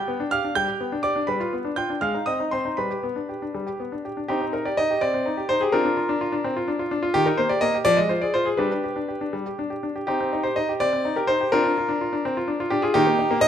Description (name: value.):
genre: classical-period piano sonatina.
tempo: 83 BPM (dotted quarters).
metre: 6/8.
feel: rubato.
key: C minor.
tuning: A4 = 440 Hz.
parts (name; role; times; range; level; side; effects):
bright grand piano; solo; 0.0-13.5 s; Eb3 to G6; -21 LUFS; equal; none.
room: moderate recital hall reverb, RT60 1.4 s.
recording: close, detailed microphones.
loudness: -21 LUFS.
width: side -9 dB against mid.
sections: 0.0-4.3 A section; 4.3-13.5 B section.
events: none.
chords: 0.0 G7; 2.0 Ab; 2.8 G; 4.3 Cm; 5.7 Bb/C; 7.2 Eb; 7.9 Fm; 8.6 G; 10.1 Cm; 11.5 Bb/C; 12.9 Eb.